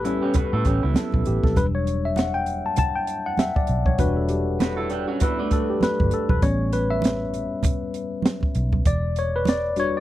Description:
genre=lush 1970s-style soul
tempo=99 BPM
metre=4/4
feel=swing 58% on 16ths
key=E dorian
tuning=A4 = 439 Hz
part: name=tine electric piano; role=accompaniment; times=0.0-10.0 s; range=F#3 to A5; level=-24 LUFS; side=left 3 dB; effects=analog chorus
part: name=electric guitar through a small old amp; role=riff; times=0.0-6.3 s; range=A3 to B4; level=-28 LUFS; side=right 5 dB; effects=spring reverb
part: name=vintage muted fingered electric bass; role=bass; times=0.0-9.9 s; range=E1 to A2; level=-25 LUFS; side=equal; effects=none
part: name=compact cocktail drum kit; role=drums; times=0.1-9.9 s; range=hi-hat, kick drum, snare drum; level=-23 LUFS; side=right 1 dB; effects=none
part: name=congas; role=percussion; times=0.3-9.6 s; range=none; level=-29 LUFS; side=right 5 dB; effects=none
room=little or no reverb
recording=dry, close 1970s-style studio recording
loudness=-20 LUFS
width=side -14 dB against mid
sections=0.0-10.0 A section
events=tine electric piano solo 0.0-10.0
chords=0.0 A7; 1.6 Em7; 6.4 A7; 8.9 Em7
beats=0.35 0.96 | 1.57 2.17 2.78 3.39 | 4.00 4.60 5.21 5.82 | 6.43 7.03 7.64 8.25 | 8.86 9.46

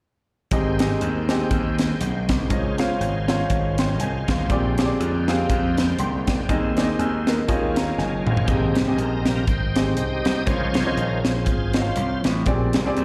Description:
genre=uptempo gospel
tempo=120 BPM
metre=4/4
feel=swing 57% on 8ths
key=Ab major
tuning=A4 = 440 Hz
part: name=clear upright piano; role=accompaniment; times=0.5-13.0 s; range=Ab2 to C6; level=-28 LUFS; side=equal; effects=slapback echo
part: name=bright tonewheel organ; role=sustained chords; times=0.5-12.2 s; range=C3 to G5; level=-32 LUFS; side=equal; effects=slow rotary speaker, overdrive, chorus vibrato
part: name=gritty slap bass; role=bass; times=0.5-13.0 s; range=Gb1 to F2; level=-27 LUFS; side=equal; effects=overdrive
part: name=crisp fusion drum kit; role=drums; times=0.5-13.0 s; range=hi-hat, kick drum, snare drum, toms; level=-26 LUFS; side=equal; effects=none
room=light reverb, small room ambience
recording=live gig heard through the venue's PA, recital hall reverb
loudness=-22 LUFS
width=mono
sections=0.5-8.5 A section; 8.5-13.0 B section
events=drum fill 8.0-8.5; tonewheel organ solo 8.5-13.0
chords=0.5 Abmaj7; 2.5 Dbmaj9; 4.5 Bb13; 6.5 Ab/Eb; 7.5 Eb9sus4; 8.5 Abmaj7; 10.5 Dbmaj9; 12.5 Bb13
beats=| 0.51 1.01 1.51 2.01 | 2.50 3.00 3.50 4.00 | 4.50 4.99 5.49 5.99 | 6.49 6.99 7.48 7.98 | 8.48 8.98 9.48 9.97 | 10.47 10.97 11.47 11.97 | 12.47 12.97

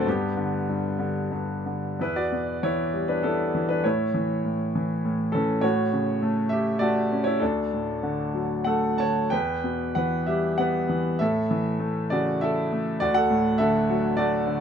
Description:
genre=classical, lyrical solo piano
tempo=89-104 BPM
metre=3/4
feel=rubato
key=E dorian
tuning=A4 = 441 Hz
part: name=bright grand piano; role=solo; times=0.0-14.6 s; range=D2 to A5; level=-22 LUFS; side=equal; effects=none
room=light reverb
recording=close, detailed microphones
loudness=-22 LUFS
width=side -8 dB against mid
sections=0.0-2.0 A section; 2.0-14.6 B section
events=none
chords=0.1 G; 2.0 Em; 3.8 A; 5.6 F#m/A; 7.4 D; 9.3 Em; 11.2 A; 13.0 D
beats=| 0.06 0.68 1.32 | 1.99 2.63 3.24 | 3.84 4.45 5.05 | 5.63 6.22 6.81 | 7.41 8.03 8.66 | 9.31 9.96 10.59 | 11.21 11.81 12.42 | 13.01 13.60 14.18

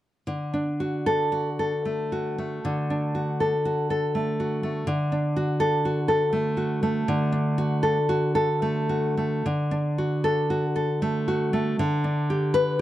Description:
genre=romantic piece for solo classical guitar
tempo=69-84 BPM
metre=3/4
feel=rubato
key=D major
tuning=A4 = 442 Hz
part: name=nylon-string guitar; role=solo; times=0.3-12.8 s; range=D3 to B4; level=-22 LUFS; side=equal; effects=none
room=small room ambience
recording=dry, close 1970s-style studio recording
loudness=-23 LUFS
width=side -14 dB against mid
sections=0.3-9.5 A section; 9.5-12.8 B section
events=none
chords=0.3 D; 11.8 G/D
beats=| 0.29 1.08 1.86 | 2.64 3.40 4.16 | 4.89 5.62 6.34 | 7.08 7.84 8.62 | 9.46 10.24 11.01 | 11.77 12.53

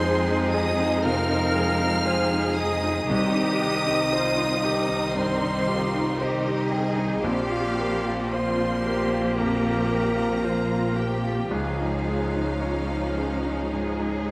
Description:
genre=cinematic, emotional film score for orchestra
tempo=54-59 BPM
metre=4/4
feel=rubato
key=F minor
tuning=A4 = 440 Hz
part: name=rich studio violin section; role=melody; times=0.0-14.3 s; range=Eb5 to F6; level=-34 LUFS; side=equal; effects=none
part: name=dark clarinet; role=second line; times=0.0-14.3 s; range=Eb4 to F5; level=-33 LUFS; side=equal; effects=none
part: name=warm studio violin section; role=second line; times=0.0-14.3 s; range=C4 to Eb4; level=-34 LUFS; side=equal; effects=none
part: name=bright concert grand piano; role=accompaniment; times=0.0-14.3 s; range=Bb1 to G5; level=-31 LUFS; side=equal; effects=none
part: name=rich studio viola section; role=accompaniment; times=0.0-14.3 s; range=Eb3 to Bb3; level=-32 LUFS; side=equal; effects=none
part: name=rich studio double bass section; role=bass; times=0.0-14.3 s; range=Bb1 to F2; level=-34 LUFS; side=equal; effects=none
part: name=warm studio cello section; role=bass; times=0.0-14.3 s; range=Db4 to Bb4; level=-34 LUFS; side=equal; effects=none
part: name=timpani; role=percussion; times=0.0-4.6 s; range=none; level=barely audible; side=none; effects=none
room=moderate scoring stage reverb, RT60 1.8 s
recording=none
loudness=-24 LUFS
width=mono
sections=0.0-14.3 A section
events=none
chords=0.0 Fm7; 3.1 Cm; 7.2 Bbsus2; 11.5 Dbadd9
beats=0.03 1.04 2.07 | 3.10 4.14 5.17 6.21 | 7.25 8.32 9.37 10.43 | 11.52 12.64 13.73

